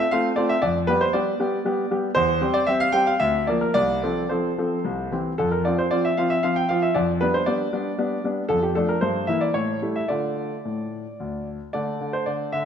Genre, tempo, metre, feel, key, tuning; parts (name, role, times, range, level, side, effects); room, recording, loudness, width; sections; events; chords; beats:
classical-period piano sonatina; 107-118 BPM; 3/4; rubato; F major, D minor from 8.5 s; A4 = 438 Hz
clear concert grand piano; solo; 0.0-12.7 s; C2 to G5; -21 LUFS; equal
moderate recital hall reverb, RT60 1.7 s; -20 LUFS; side -8 dB against mid
0.0-11.7 A section
0.0 F; 0.6 G7/F; 2.2 C/E; 3.2 Bb/D; 3.8 F/C; 4.9 C; 5.4 F5; 7.0 G7/F; 8.5 Dm/F; 9.0 Edim/G; 9.5 A7; 10.1 Dm; 11.7 D5
0.11 | 0.62 1.14 1.65 | 2.16 2.68 3.21 | 3.75 4.30 4.85 | 5.39 5.92 6.44 | 6.96 7.47 7.98 | 8.50 9.02 9.54 | 10.09 10.65 11.20 | 11.74 12.27